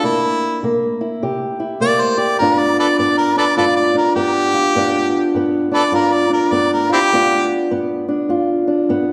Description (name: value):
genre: acoustic country blues, solo or duo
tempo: 102 BPM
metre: 4/4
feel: swing 62% on 8ths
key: G mixolydian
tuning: A4 = 439 Hz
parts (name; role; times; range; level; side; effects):
- warm harmonica; melody; 0.0-7.5 s; C4 to D5; -19 LUFS; equal; none
- fingerpicked old ladder-braced acoustic guitar; accompaniment; 0.0-9.1 s; G2 to G4; -19 LUFS; equal; none
room: wet recital hall reverb, RT60 1.4 s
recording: recorded in a church or concert hall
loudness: -16 LUFS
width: mono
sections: 0.0-9.1 A section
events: none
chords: 0.0 C7; 2.4 G7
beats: | 0.05 0.63 1.22 1.81 | 2.40 2.99 3.58 4.17 | 4.75 5.34 5.93 6.52 | 7.11 7.70 8.29 8.89